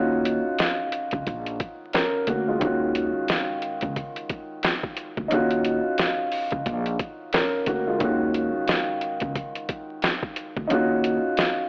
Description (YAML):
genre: hip hop, boom-bap hip-hop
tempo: 89 BPM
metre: 4/4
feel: swing 59% on 16ths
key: Eb minor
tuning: A4 = 441 Hz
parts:
  - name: dark upright piano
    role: accompaniment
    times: 0.0-11.7 s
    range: Eb3 to Bb4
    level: -28 LUFS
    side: equal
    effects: cassette tape, high-pass filter, low-pass filter
  - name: upright bass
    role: bass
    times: 0.0-11.2 s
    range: Bb1 to Eb2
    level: -31 LUFS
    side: equal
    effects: tube saturation
  - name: boom bap sampler-style drum kit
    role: drums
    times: 0.3-11.6 s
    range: hi-hat, kick drum, snare drum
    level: -28 LUFS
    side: equal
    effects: vintage 12-bit sampler grit
room: light reverb, small room ambience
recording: dry, gritty hardware recording, vinyl crackle, AM radio sound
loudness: -25 LUFS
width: mono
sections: 0.0-11.7 A section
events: none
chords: 0.0 Ebm9